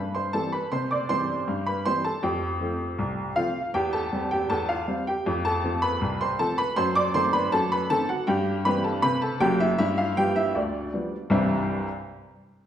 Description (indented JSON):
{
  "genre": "ragtime piano",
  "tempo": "79 BPM",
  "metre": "2/4",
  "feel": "straight",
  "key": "C major",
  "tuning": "A4 = 437 Hz",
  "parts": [
    { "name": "warm upright piano", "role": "solo", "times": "0.0-11.9 s", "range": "F#1 to D6", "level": "-23 LUFS", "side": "equal", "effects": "none" }
  ],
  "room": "wet recital hall reverb, RT60 1.4 s",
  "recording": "recorded in a church or concert hall",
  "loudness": "-23 LUFS",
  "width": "side -10 dB against mid",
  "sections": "0.0-11.3 A section; 11.3-12.7 B section",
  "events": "none",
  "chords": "0.0 C; 2.2 F; 3.7 C/E; 5.3 F; 6.8 F#dim7; 8.3 C/G; 9.8 G7; 11.3 C"
}